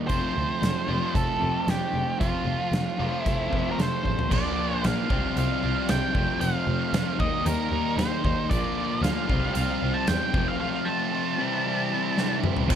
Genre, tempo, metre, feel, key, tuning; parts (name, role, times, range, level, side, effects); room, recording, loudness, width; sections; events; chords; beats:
classic rock; 114 BPM; 4/4; straight; F major; A4 = 440 Hz
cranked stack guitar; riff; 0.0-12.8 s; F2 to F4; -30 LUFS; right 9 dB; overdrive
crunchy overdriven guitar; riff; 0.0-12.8 s; F2 to Eb4; -31 LUFS; left 14 dB; spring reverb
octave-fuzz lead guitar; melody; 0.1-12.4 s; F4 to A5; -29 LUFS; right 1 dB; distortion
warm double bass; bass; 0.1-12.8 s; F1 to E2; -30 LUFS; equal
big rock drum kit; drums; 0.1-12.8 s; crash cymbal, hi-hat, kick drum, snare drum, toms; -29 LUFS; equal
biting overdriven guitar; second line; 3.0-4.2 s; A4 to C5; -38 LUFS; left 6 dB
crunchy overdriven guitar; riff; 12.7-12.8 s; F2 to F3; -26 LUFS; equal
little or no reverb; -23 LUFS; side -9 dB against mid
0.0-4.3 A section; 4.3-12.7 B section
drum fill 4.0, 12.2-12.7
0.1 F; 4.3 Bb; 5.1 Csus4; 6.1 F; 7.2 Eb; 8.5 Bb; 9.3 Csus4; 10.3 F; 11.4 C
| 0.10 0.62 1.15 1.68 | 2.20 2.73 3.26 3.78 | 4.31 4.83 5.36 5.88 | 6.41 6.93 7.46 7.98 | 8.51 9.03 9.55 10.08 | 10.60 11.12 11.65 12.17 | 12.70